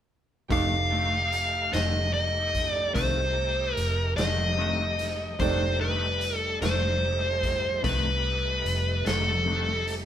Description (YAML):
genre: slow blues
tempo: 49 BPM (dotted quarters)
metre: 12/8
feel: straight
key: F mixolydian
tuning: A4 = 440 Hz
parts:
  - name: dark smooth lead guitar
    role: melody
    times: 0.5-9.9 s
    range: A4 to F5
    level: -27 LUFS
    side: left 1 dB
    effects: overdrive
  - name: clean electric guitar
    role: accompaniment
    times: 0.5-9.7 s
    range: F2 to D4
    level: -34 LUFS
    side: left 3 dB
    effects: harmonic tremolo
  - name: clear upright piano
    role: accompaniment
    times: 0.5-10.1 s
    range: Eb4 to D6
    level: -36 LUFS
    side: right 8 dB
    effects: none
  - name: bright tonewheel organ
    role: sustained chords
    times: 0.5-10.1 s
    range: G3 to G4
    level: -37 LUFS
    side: right 2 dB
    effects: slow rotary speaker, chorus vibrato
  - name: vintage muted fingered electric bass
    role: bass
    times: 0.5-10.1 s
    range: F1 to C2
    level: -29 LUFS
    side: equal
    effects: none
  - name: raw garage drum kit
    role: drums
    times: 0.5-10.1 s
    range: hi-hat, kick drum, snare drum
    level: -33 LUFS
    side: equal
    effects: none
room: moderate stone room reverb, RT60 1.0 s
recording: band playing live in one room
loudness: -24 LUFS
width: side -10 dB against mid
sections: 0.5-10.1 A section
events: none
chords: 0.5 F13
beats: | 0.50 1.73 2.95 4.17 | 5.39 6.62 7.84 9.06